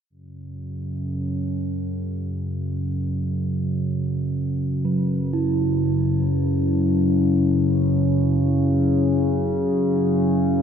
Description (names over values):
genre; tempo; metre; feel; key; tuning
dark ambient drone; free time; none; none; unclear; A4 = 438 Hz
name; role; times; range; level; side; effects
analog drone; drone; 0.3-10.6 s; F#2 to C#3; -20 LUFS; left 1 dB; chorus
bronze singing bowl; arpeggios; 4.8-10.6 s; F#3 to E4; -25 LUFS; right 3 dB; ping-pong delay
room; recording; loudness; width
wet cathedral reverb, RT60 5.5 s; in a vast, echoing space; -20 LUFS; side -8 dB against mid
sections
0.1-10.6 A section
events
none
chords
0.1 F#5